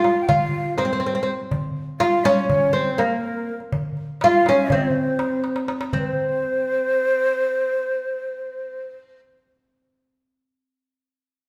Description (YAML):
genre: Turkish makam ensemble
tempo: 244 BPM (eighths)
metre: 9/8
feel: straight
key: C makam hicaz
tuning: A4 = 439 Hz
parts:
  - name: oud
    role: melody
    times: 0.0-9.2 s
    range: Bb3 to F4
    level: -22 LUFS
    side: equal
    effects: none
  - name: breathy bright ney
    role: second line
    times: 0.0-8.9 s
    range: Bb4 to G5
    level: -26 LUFS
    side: equal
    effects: none
  - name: darbuka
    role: percussion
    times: 0.0-6.2 s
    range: none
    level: -29 LUFS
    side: equal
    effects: none
room: wet large studio reverb, RT60 1.3 s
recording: band playing live in one room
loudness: -21 LUFS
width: mono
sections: 0.0-5.9 A section; 5.9-8.2 B section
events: drum fill 5.5-5.9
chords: none